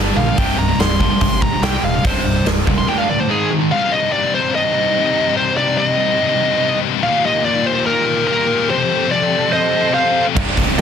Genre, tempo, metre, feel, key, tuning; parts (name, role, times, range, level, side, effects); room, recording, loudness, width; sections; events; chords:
heavy metal; 144 BPM; 4/4; straight; C minor, C dorian from 3.7 s; A4 = 440 Hz
distorted electric guitar; riff; 0.0-3.7, 10.3-10.8 s; C2 to Ab3; -22 LUFS; right 14 dB; distortion
high-gain distorted guitar; riff; 0.0-3.7, 10.3-10.8 s; C2 to Ab3; -24 LUFS; right 1 dB; distortion
scooped high-gain guitar; riff; 0.0-10.8 s; C2 to Ab3; -20 LUFS; left 12 dB; distortion
growling picked electric bass; bass; 0.0-2.8, 10.4-10.8 s; C1 to C2; -21 LUFS; equal; overdrive
high-gain lead guitar; melody; 0.2-10.8 s; Ab4 to C6; -18 LUFS; equal; distortion
big rock drum kit; drums; 0.4-2.8, 10.4-10.8 s; crash cymbal, hi-hat, kick drum, snare drum; -19 LUFS; right 1 dB
dark studio string section; sustained chords; 3.7-10.8 s; C3 to A4; -25 LUFS; right 1 dB
high-gain lead guitar; second line; 9.5-10.8 s; C5; -20 LUFS; right 7 dB; distortion
light reverb; dense, heavily limited modern master; -14 LUFS; side -8 dB against mid
0.0-3.7 A section; 3.7-10.8 B section
lead electric guitar solo 0.0-3.7
0.4 C5; 2.9 D5; 3.3 Ab5; 3.7 Cm; 7.0 Eb; 8.7 F